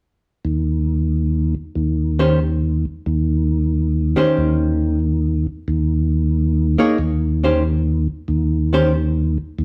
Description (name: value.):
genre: jazz.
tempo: 92 BPM.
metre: 4/4.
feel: swing 68% on 8ths.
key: unclear.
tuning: A4 = 440 Hz.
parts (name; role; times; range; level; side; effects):
tonewheel organ; bass; 0.4-9.6 s; Eb2; -20 LUFS; equal; overdrive, slow rotary speaker.
archtop guitar, miked and amplified; accompaniment; 2.2-8.9 s; Eb3 to Db5; -20 LUFS; equal; none.
room: wet studio reverb, RT60 0.9 s.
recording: heard from further back in the room.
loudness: -19 LUFS.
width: mono.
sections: 0.0-9.6 A section.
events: none.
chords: 0.0 Eb7; 5.0 Bbmadd11 (rootless); 7.6 N.C..